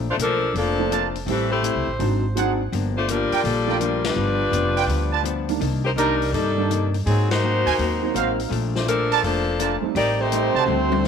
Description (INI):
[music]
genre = jazz, big band swing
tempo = 166 BPM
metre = 4/4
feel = swing 66% on 8ths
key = Bb major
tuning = A4 = 440 Hz
[part]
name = archtop guitar, miked and amplified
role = accompaniment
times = 0.0-11.1 s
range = G2 to F#4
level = -29 LUFS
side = left 11 dB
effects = none
[part]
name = upright bass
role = bass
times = 0.0-11.1 s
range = F1 to Ab2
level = -25 LUFS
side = right 1 dB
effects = none
[part]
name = bright saxophone section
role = melody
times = 0.1-11.1 s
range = E3 to D5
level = -23 LUFS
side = left 2 dB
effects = none
[part]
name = open jazz drum kit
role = drums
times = 0.2-11.1 s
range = hi-hat, ride cymbal, snare drum, toms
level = -31 LUFS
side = left 10 dB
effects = none
[part]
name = warm concert grand piano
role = accompaniment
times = 0.8-11.1 s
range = Eb3 to E4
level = -28 LUFS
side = right 14 dB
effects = none
[part]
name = clear trumpet section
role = stabs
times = 0.9-10.6 s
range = D4 to Bb5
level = -26 LUFS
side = right 11 dB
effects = none
[part]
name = clear trombone section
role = second line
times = 10.2-11.1 s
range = Eb3 to C4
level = -23 LUFS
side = right 11 dB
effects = none
[sound]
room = moderate echo chamber reverb, RT60 1.4 s, small room ambience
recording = 1960s-style stereo with parts hard left and right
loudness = -19 LUFS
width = side -7 dB against mid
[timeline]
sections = 0.0-11.1 A section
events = band accent 4.0, 7.2; drum fill 10.7-11.1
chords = 0.0 Bbmaj7; 1.3 Am7; 2.0 Ab7#11; 2.7 Gm7; 4.2 G7; 5.6 Cm9; 7.1 Ab9; 8.5 Bbmaj7; 10.0 Am7b5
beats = 0.19 0.55 0.91 | 1.27 1.64 2.00 2.36 | 2.72 3.08 3.44 3.81 | 4.17 4.53 4.89 5.25 | 5.62 5.98 6.34 6.70 | 7.06 7.42 7.79 8.15 | 8.51 8.87 9.23 9.59 | 9.95 10.31 10.68 11.04